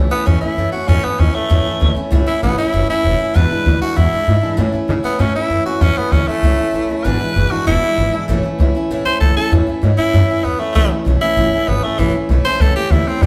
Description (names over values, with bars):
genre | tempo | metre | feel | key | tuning
rockabilly | 195 BPM | 4/4 | straight | A major | A4 = 440 Hz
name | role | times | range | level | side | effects
picked steel-string acoustic guitar | accompaniment | 0.0-13.3 s | E2 to E4 | -23 LUFS | equal | none
upright bass | bass | 0.0-13.3 s | E1 to C#3 | -18 LUFS | equal | none
raspy tenor saxophone | melody | 0.1-13.3 s | E3 to C5 | -21 LUFS | equal | none
room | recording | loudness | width
wet large studio reverb, RT60 1.3 s | band playing live in one room | -16 LUFS | mono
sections
0.0-9.5 A section; 9.5-13.3 B section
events
tenor saxophone solo 9.5-13.3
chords
0.0 A; 3.4 E7; 4.6 A; 7.0 E7; 8.3 A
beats
0.27 0.58 | 0.89 1.19 1.50 1.81 | 2.12 2.43 2.73 3.04 | 3.35 3.66 3.97 4.28 | 4.58 4.89 5.20 5.51 | 5.82 6.12 6.43 6.74 | 7.05 7.36 7.67 7.97 | 8.28 8.59 8.90 9.21 | 9.52 9.83 10.13 10.44 | 10.75 11.06 11.37 11.68 | 11.98 12.29 12.60 12.91 | 13.22